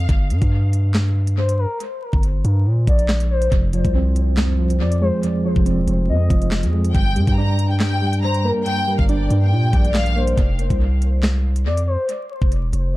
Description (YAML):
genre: hip hop, drill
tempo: 140 BPM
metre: 4/4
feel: half-time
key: G phrygian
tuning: A4 = 440 Hz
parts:
  - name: warm studio violin section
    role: melody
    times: 0.0-0.1, 6.9-10.1 s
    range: D5 to Bb5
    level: -27 LUFS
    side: left 2 dB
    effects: tape echo
  - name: long sustained 808-style bass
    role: bass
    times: 0.0-13.0 s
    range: Eb1 to Bb2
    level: -18 LUFS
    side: equal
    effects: none
  - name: drill drum kit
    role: drums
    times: 0.1-12.8 s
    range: handclaps, hi-hat, kick drum, snare drum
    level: -21 LUFS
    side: equal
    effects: tape echo
  - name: gliding portamento lead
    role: second line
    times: 1.4-13.0 s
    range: Bb4 to Eb5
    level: -27 LUFS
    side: left 3 dB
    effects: chorus, tape echo
  - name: soft electric-piano-like synth keys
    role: accompaniment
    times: 3.5-10.4 s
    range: F2 to D4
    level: -22 LUFS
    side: right 2 dB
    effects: chorus, tremolo, tape echo
room: digital ambience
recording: echo-heavy mix, vinyl crackle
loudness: -16 LUFS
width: side -18 dB against mid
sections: 0.0-13.0 A section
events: none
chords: 0.1 Gm; 3.5 Fm7; 6.9 Gm; 10.4 F5